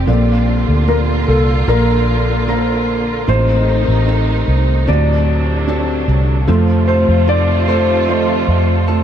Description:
pop; 75 BPM; 4/4; straight; A4 = 441 Hz
felt-muted upright piano; accompaniment; 0.0-9.0 s; A2 to Eb5; -19 LUFS; equal; analog chorus
warm studio string section; sustained chords; 0.0-9.0 s; C3 to F4; -21 LUFS; right 2 dB
direct-recorded clean electric guitar; arpeggios; 0.0-9.0 s; Bb2 to A4; -26 LUFS; left 4 dB
vintage muted fingered electric bass; bass; 0.0-9.0 s; A1 to F2; -15 LUFS; equal
warm baby grand piano; melody; 0.9-8.8 s; A4 to D5; -19 LUFS; left 1 dB; wide subtle chorus
moderate huge ambient reverb, RT60 6.9 s; dreamy mix soaked in reverb; -12 LUFS; side -9 dB against mid
0.0-6.5 A section; 6.5-9.0 B section
0.1 Bbmaj7; 3.3 Adim; 4.9 D7; 6.5 F

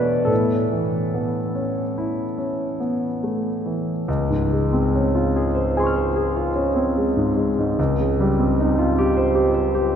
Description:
classical, impressionist solo piano; 48 BPM (dotted quarters); 9/8; rubato; Db lydian from 4.1 s; A4 = 436 Hz
clear concert grand piano; solo; 0.0-10.0 s; Db2 to F6; -18 LUFS; equal
wet cathedral reverb, RT60 5.5 s; recorded in a church or concert hall; -19 LUFS; side -8 dB against mid
0.0-4.1 A section; 4.1-10.0 B section
0.3 Aadd9; 4.1 Dbmaj7; 7.8 Eb13/Db

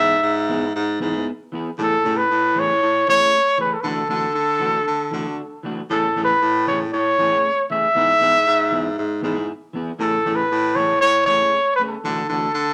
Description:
highlife guitar band; 117 BPM; 4/4; straight; A major; A4 = 443 Hz
breathy trumpet; melody; 0.0-12.7 s; A4 to E5; -20 LUFS; equal
electric guitar at the edge of break-up; accompaniment; 0.0-12.5 s; E3 to G#4; -31 LUFS; equal
warm baritone saxophone; bass; 0.0-12.7 s; G#2 to D3; -26 LUFS; equal
moderate club reverb, RT60 0.7 s; -19 LUFS; mono
0.0-12.7 A section
0.0 E/G#; 1.8 Amaj7; 3.8 Dadd9; 5.9 Amaj7; 8.0 E/G#; 10.0 Amaj7; 12.0 Dadd9

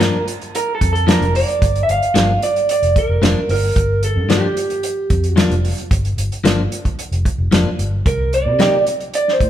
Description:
straight-eighth soul blues; 112 BPM; 4/4; straight; G minor; A4 = 440 Hz
electric guitar through a small old amp; melody; 0.0-9.5 s; G4 to F5; -18 LUFS; right 2 dB; slapback echo
direct-recorded clean electric guitar; stabs; 0.0-8.8 s; G2 to G4; -20 LUFS; left 4 dB
vintage muted fingered electric bass; bass; 0.0-9.5 s; F1 to C3; -20 LUFS; equal
warm soul drum kit; drums; 0.0-9.5 s; hi-hat, kick drum, snare drum; -19 LUFS; right 1 dB
wet large studio reverb, RT60 1.5 s; band playing live in one room; -14 LUFS; side -11 dB against mid
0.0-9.5 A section
0.0 Gm7; 8.1 N.C.

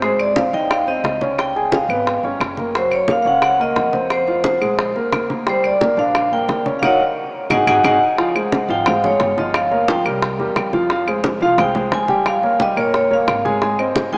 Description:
Afro-Cuban jazz; 177 BPM; 4/4; straight; A4 = 440 Hz
vibraphone with medium hard mallets; melody; 0.0-14.2 s; C5 to Ab5; -18 LUFS; equal
warm grand piano; accompaniment; 0.0-14.2 s; F3 to Ab5; -20 LUFS; equal
upright bass; bass; 0.0-14.2 s; Gb1 to F2; -32 LUFS; equal
bongos; percussion; 0.0-14.1 s; -24 LUFS; equal
congas; percussion; 0.0-14.2 s; -26 LUFS; equal
claves; percussion; 0.2-14.0 s; -26 LUFS; equal
wet cathedral reverb, RT60 5.6 s; in a vast, echoing space, small speaker sound; -15 LUFS; side -30 dB against mid
0.0-8.2 A section; 8.2-14.2 B section
band accent 6.8-8.2; drum fill 7.2-8.2
0.0 Ab; 1.4 Db7; 2.7 Gbmaj7; 4.1 Fm; 4.8 Bb7; 5.5 Ebmaj7; 6.8 Ebm; 7.5 Ab5; 8.2 Dbmaj7; 9.5 Gm7b5; 10.2 C7; 10.9 Fm9; 12.3 Eb9; 13.6 Ab

